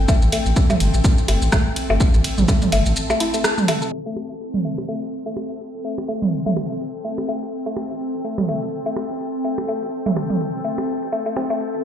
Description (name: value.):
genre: minimal techno.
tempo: 125 BPM.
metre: 4/4.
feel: swing 57% on 16ths.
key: A minor.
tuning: A4 = 440 Hz.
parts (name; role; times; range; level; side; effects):
round analog bass; bass; 0.0-11.8 s; G1 to B1; -22 LUFS; equal; sidechain pumping, high-pass filter.
ethereal airy pad; texture; 0.0-11.8 s; C4 to A5; -26 LUFS; left 1 dB; ensemble chorus, built-in reverb, sidechain pumping.
mallet-like synth pluck; riff; 0.1-11.5 s; A3 to A4; -26 LUFS; left 2 dB; chorus, sidechain pumping, dub echo.
electronic kick drum; drums; 0.1-2.6 s; none; -17 LUFS; equal; none.
punchy analog drum machine; drums; 0.1-3.9 s; hi-hat, ride cymbal, rim click, shaker; -25 LUFS; equal; none.
electronic percussion blips and toms; percussion; 0.1-11.5 s; none; -24 LUFS; right 3 dB; ping-pong delay.
room: moderate studio reverb, RT60 0.6 s.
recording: played on a big sound system in a bare room, stone room reverb, low-pass filter.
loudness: -19 LUFS.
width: side -9 dB against mid.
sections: 0.0-3.9 A section; 3.9-11.8 B section.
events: drop 0.0-3.9; break 3.0-3.9; band accent 3.4; filter sweep 3.9-11.8.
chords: 0.0 Am7.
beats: | 0.08 0.56 1.04 1.52 | 2.00 2.48 2.96 3.44 | 3.92 4.40 4.88 5.36 | 5.84 6.32 6.80 7.28 | 7.76 8.24 8.72 9.20 | 9.68 10.16 10.64 11.12 | 11.60.